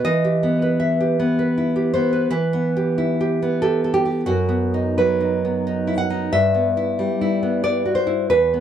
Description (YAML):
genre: romantic piece for solo classical guitar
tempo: 77-93 BPM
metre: 3/4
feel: rubato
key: E minor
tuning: A4 = 440 Hz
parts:
  - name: nylon-string guitar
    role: solo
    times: 0.0-8.6 s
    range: E2 to F#5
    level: -17 LUFS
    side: equal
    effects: none
room: light reverb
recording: dark, warm production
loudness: -18 LUFS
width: side -9 dB against mid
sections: 0.0-2.3 A section; 2.3-8.6 B section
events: none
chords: 0.1 Em; 4.3 B/F#; 6.3 Em/G